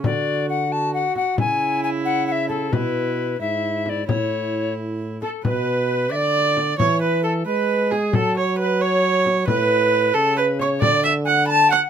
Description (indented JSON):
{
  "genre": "classical, renaissance-style consort dance",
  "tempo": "89 BPM (dotted quarters)",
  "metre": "6/8",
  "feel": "straight",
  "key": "E mixolydian",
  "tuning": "A4 = 441 Hz",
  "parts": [
    { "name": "warm viola", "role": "second line", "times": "0.0-11.8 s", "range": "E4 to A5", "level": "-21 LUFS", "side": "right 3 dB", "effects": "none" },
    { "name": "mellow trombone", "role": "bass", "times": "0.0-11.9 s", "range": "G#2 to G#3", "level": "-25 LUFS", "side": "right 1 dB", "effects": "none" },
    { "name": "frame drum", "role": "percussion", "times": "0.0-11.0 s", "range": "none", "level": "-24 LUFS", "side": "left 3 dB", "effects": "none" },
    { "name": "bright alto recorder", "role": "melody", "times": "0.1-11.9 s", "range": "G#4 to B5", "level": "-24 LUFS", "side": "left 6 dB", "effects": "none" }
  ],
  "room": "light reverb",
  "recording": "close, detailed microphones",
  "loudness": "-18 LUFS",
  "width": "side -8 dB against mid",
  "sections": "0.0-5.4 A section; 5.4-11.9 A section",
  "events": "none",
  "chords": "0.0 D; 1.4 C#m; 2.7 E/B; 4.1 A; 5.4 Bm; 6.8 E; 8.1 F#5; 9.5 A; 10.8 D",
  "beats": "| 0.04 0.71 | 1.38 2.05 | 2.73 3.40 | 4.08 4.76 | 5.45 6.12 | 6.79 7.46 | 8.14 8.81 | 9.48 10.14 | 10.81 11.48"
}